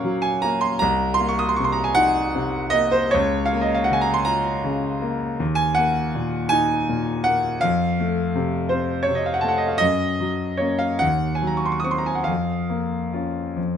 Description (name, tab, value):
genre	classical, romantic nocturne for solo piano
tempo	46-56 BPM (dotted quarters)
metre	12/8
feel	rubato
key	Bb minor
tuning	A4 = 440 Hz
part	clear concert grand piano	solo	0.0-13.8 s	C2 to Eb6	-19 LUFS	equal	none
room	light reverb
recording	close, detailed microphones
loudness	-19 LUFS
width	side -8 dB against mid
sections	0.0-13.8 A section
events	none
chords	0.0 Gb/Bb; 0.8 Cm7b5; 3.1 Bbm/Db; 5.4 Ebm; 7.6 F; 9.8 Gb; 11.0 Cdim/Eb; 12.3 Bbm/F